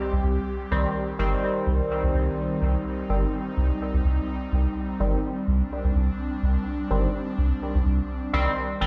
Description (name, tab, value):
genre	dub techno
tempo	126 BPM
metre	4/4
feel	swing 54% on 16ths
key	C minor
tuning	A4 = 440 Hz
part	airy breathy pad	sustained chords	0.0-8.9 s	G3 to G4	-33 LUFS	equal	chorus
part	soft dub sub bass	bass	0.1-8.9 s	G1 to C2	-25 LUFS	equal	none
part	resonant sweep polysynth	stabs	0.7-8.9 s	Eb3 to C4	-31 LUFS	equal	chorus, phaser, dub echo
room	moderate echo chamber reverb, RT60 1.8 s, digital ambience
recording	played on a big sound system in a bare room, stone room reverb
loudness	-25 LUFS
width	mono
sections	0.0-8.9 A section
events	filter sweep on analog polysynth 0.0-8.9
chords	0.0 Cm